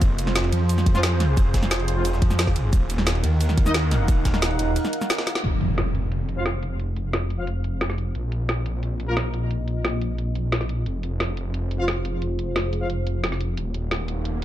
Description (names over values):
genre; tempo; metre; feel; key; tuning
dark technical drum and bass; 177 BPM; 4/4; straight; F phrygian; A4 = 442 Hz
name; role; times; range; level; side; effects
dark analog pad; sustained chords; 0.0-14.4 s; Bb3 to Gb5; -31 LUFS; right 2 dB; chorus, sidechain pumping
snarling distorted saw bass; bass; 0.0-14.4 s; Eb1 to F2; -24 LUFS; equal; distortion, overdrive, sidechain pumping
breakbeat sampler-style drum kit; drums; 0.0-5.3 s; hi-hat, ride cymbal, snare drum; -37 LUFS; right 1 dB; none
drum and bass drum kit; drums; 0.0-14.4 s; cabasa, crash cymbal, hi-hat, snare drum; -26 LUFS; equal; low-pass filter on hats, low-pass filter on cymbals, low-pass filter on perc, low-pass filter on snare, low-pass filter on room
electronic kick drum; drums; 0.0-4.3 s; none; -20 LUFS; equal; none
warm brass ensemble; stabs; 0.9-3.7, 6.4-9.1, 11.8-12.9 s; F3 to F5; -30 LUFS; left 1 dB; low-pass filter, dub echo
impact and riser; sound effects; 5.4-6.8, 13.9-14.4 s; none; -28 LUFS; equal; none
room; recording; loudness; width
light reverb; dark, warm production; -21 LUFS; side -13 dB against mid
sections
0.0-5.4 A section; 5.4-14.4 B section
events
drop 0.0-5.4; break 4.8-5.4; drum fill 5.2; band accent 5.4; impact 5.4-6.8; filter sweep on analog synth pad 5.4-14.4; riser 13.9-14.4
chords
0.0 Fm; 2.7 Ebm; 5.4 Fm; 8.2 Bbsus4; 10.9 Fm; 13.6 Ebm